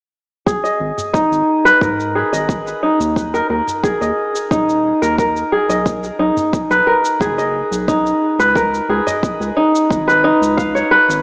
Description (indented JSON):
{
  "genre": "organic downtempo",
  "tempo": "89 BPM",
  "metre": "4/4",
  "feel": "straight",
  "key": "G# dorian",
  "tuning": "A4 = 440 Hz",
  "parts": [
    { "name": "kora", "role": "arpeggios", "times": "0.5-11.2 s", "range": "D#4 to E#5", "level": "-16 LUFS", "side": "equal", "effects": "low-pass filter, tape echo, shimmer reverb" },
    { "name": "cabasa", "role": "drums", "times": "0.5-11.2 s", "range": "none", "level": "-35 LUFS", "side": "equal", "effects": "small room ambience" },
    { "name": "electronic kick drum", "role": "drums", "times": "0.5-10.7 s", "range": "none", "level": "-23 LUFS", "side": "equal", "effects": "small room ambience" },
    { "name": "round analog bass", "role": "bass", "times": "0.8-11.2 s", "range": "D#1 to G#2", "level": "-27 LUFS", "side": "equal", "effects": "sidechain pumping" },
    { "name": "udu", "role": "percussion", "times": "1.0-9.2 s", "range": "none", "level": "-37 LUFS", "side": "equal", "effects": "none" }
  ],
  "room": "moderate lush hall reverb, RT60 2.3 s",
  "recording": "small speaker sound",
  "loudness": "-16 LUFS",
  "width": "mono",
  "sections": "0.5-11.2 A section",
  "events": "filter sweep on kora 0.5-11.2",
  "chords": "0.5 G#5; 3.2 D#5; 5.9 Bmaj7; 8.6 C#7"
}